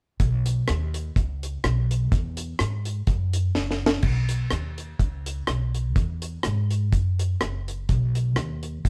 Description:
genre	ska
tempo	125 BPM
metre	4/4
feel	swing 55% on 8ths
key	B major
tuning	A4 = 438 Hz
part	upright bass	bass	0.2-8.9 s	F#1 to G#2	-27 LUFS	equal	none
part	deep reggae drum kit	drums	0.2-8.9 s	crash cymbal, hi-hat, kick drum, rim click, snare drum	-27 LUFS	equal	none
room	moderate stone room reverb, RT60 0.9 s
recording	band playing live in one room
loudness	-25 LUFS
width	mono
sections	0.2-4.0 A section; 4.0-8.9 B section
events	drum fill 3.6-4.0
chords	none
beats	| 0.19 0.67 1.15 1.63 | 2.11 2.59 3.08 3.56 | 4.04 4.52 5.00 5.48 | 5.96 6.44 6.93 7.41 | 7.89 8.37 8.85

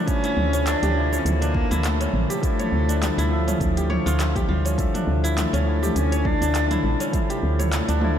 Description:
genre	organic downtempo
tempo	102 BPM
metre	4/4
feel	swing 56% on 16ths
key	D harmonic minor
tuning	A4 = 445 Hz
part	warm cello	melody	0.0-8.2 s	F3 to D4	-26 LUFS	equal	analog delay
part	barky tine electric piano	accompaniment	0.0-8.2 s	D3 to E5	-29 LUFS	left 4 dB	overdrive, sidechain pumping, analog delay
part	kora	arpeggios	0.0-8.2 s	C#4 to C#5	-29 LUFS	equal	analog delay
part	electronic kick drum	drums	0.1-7.3 s	none	-25 LUFS	equal	overdrive
part	organic electronic drum kit	drums	0.1-8.1 s	handclaps, hi-hat, shaker, toms	-29 LUFS	right 1 dB	overdrive
part	woody FM bass	bass	0.4-8.2 s	A1 to D2	-23 LUFS	equal	none
room	moderate cathedral reverb, RT60 6.0 s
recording	dreamy mix soaked in reverb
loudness	-19 LUFS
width	side -9 dB against mid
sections	0.0-8.2 A section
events	none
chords	0.0 Dmadd9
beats	| 0.08 0.66 1.25 1.84 | 2.43 3.02 3.60 4.19 | 4.78 5.37 5.96 6.55 | 7.13 7.72

